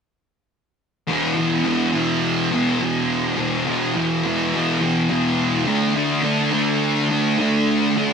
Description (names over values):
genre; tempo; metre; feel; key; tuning
rock; 105 BPM; 4/4; straight; unclear; A4 = 440 Hz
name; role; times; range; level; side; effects
thick fuzz guitar; solo; 1.1-8.1 s; E2 to D4; -18 LUFS; equal; distortion, lush chorus
room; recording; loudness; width
moderate huge ambient reverb, RT60 4.4 s; none; -18 LUFS; side -6 dB against mid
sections
1.1-8.1 A section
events
none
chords
1.1 E5; 5.7 D5